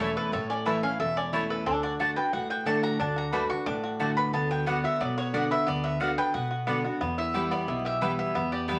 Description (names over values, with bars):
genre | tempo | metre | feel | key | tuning
bluegrass | 180 BPM | 4/4 | straight | unclear | A4 = 440 Hz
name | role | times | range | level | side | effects
mandolin | melody | 0.0-8.8 s | A4 to D6 | -33 LUFS | equal | none
picked steel-string acoustic guitar | accompaniment | 0.0-8.8 s | E2 to F#4 | -33 LUFS | equal | none
bluegrass banjo | arpeggios | 0.0-8.8 s | F#3 to B4 | -34 LUFS | equal | none
mandolin | stabs | 0.0-8.8 s | A3 to A5 | -34 LUFS | equal | none
upright bass | bass | 0.0-8.8 s | E1 to B2 | -40 LUFS | equal | none
room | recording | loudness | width
wet studio reverb, RT60 0.6 s | vinyl crackle | -28 LUFS | mono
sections
0.0-7.0 A section; 7.0-8.8 B section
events
mandolin solo 0.0-7.0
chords
0.0 A; 1.7 D; 4.3 Bm/D; 7.0 Em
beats
| 0.33 0.66 1.00 1.33 | 1.66 2.00 2.33 2.67 | 3.00 3.33 3.67 4.00 | 4.33 4.67 5.00 5.34 | 5.67 6.01 6.34 6.68 | 7.01 7.35 7.68 8.02 | 8.35 8.69